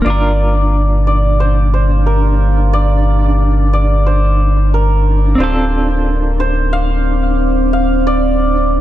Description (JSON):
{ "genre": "trip hop", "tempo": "90 BPM", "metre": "4/4", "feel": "swing 55% on 16ths", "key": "G minor", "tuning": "A4 = 441 Hz", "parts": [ { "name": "santur", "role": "melody", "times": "0.0-8.8 s", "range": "Bb4 to F5", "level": "-20 LUFS", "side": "equal", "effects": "tape echo" }, { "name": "semi-hollow electric guitar", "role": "accompaniment", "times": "0.0-8.8 s", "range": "Bb3 to Bb4", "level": "-20 LUFS", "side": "right 1 dB", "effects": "tremolo, tape echo" }, { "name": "round analog bass", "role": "bass", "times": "0.0-8.8 s", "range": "D1 to G1", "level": "-13 LUFS", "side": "equal", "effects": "none" }, { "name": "flickering grainy texture", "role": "texture", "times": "0.0-8.8 s", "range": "D4", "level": "-23 LUFS", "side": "right 1 dB", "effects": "built-in reverb" }, { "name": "deep dark ambient pad", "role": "sustained chords", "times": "0.9-8.8 s", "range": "Bb3 to F6", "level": "-21 LUFS", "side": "equal", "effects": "chorus, built-in reverb" } ], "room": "digital ambience", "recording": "dark, warm production", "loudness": "-11 LUFS", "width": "side -13 dB against mid", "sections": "0.0-8.8 A section", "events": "filter sweep on ambient pad 0.0-8.8", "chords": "0.1 Gm7; 5.4 Dm7" }